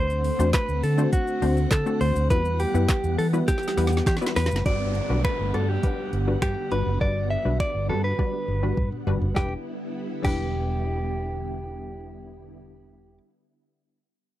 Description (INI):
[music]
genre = dance-pop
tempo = 102 BPM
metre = 4/4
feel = straight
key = E minor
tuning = A4 = 439 Hz
[part]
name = direct-recorded clean electric guitar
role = melody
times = 0.0-13.2 s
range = F#4 to E5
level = -28 LUFS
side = equal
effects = slapback echo
[part]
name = wide unison pluck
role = accompaniment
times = 0.0-13.2 s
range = G3 to F#5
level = -30 LUFS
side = left 3 dB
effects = none
[part]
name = soft string machine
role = sustained chords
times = 0.0-12.5 s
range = D3 to F#5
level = -34 LUFS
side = equal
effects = ensemble chorus, sidechain pumping
[part]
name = vintage muted fingered electric bass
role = bass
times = 0.0-13.2 s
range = E1 to E3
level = -26 LUFS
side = equal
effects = sidechain pumping
[part]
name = smooth R&B drum kit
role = drums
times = 0.1-10.4 s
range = crash cymbal, finger snaps, handclaps, hi-hat, kick drum, shaker, snare drum, toms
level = -26 LUFS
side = equal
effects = none
[part]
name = group handclap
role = percussion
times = 0.5-4.2 s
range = none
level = -41 LUFS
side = right 8 dB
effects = none
[part]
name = downlifter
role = sound effects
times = 4.7-9.4 s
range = none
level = -37 LUFS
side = equal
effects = none
[sound]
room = little or no reverb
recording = dry, close 1970s-style studio recording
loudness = -22 LUFS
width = side -14 dB against mid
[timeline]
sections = 0.0-4.7 A section; 4.7-9.4 B section; 9.4-11.7 C section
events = drum fill 3.5-4.7, 8.2-9.4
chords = 0.0 D7; 2.3 Emadd9; 4.7 Gmaj7; 9.4 Em7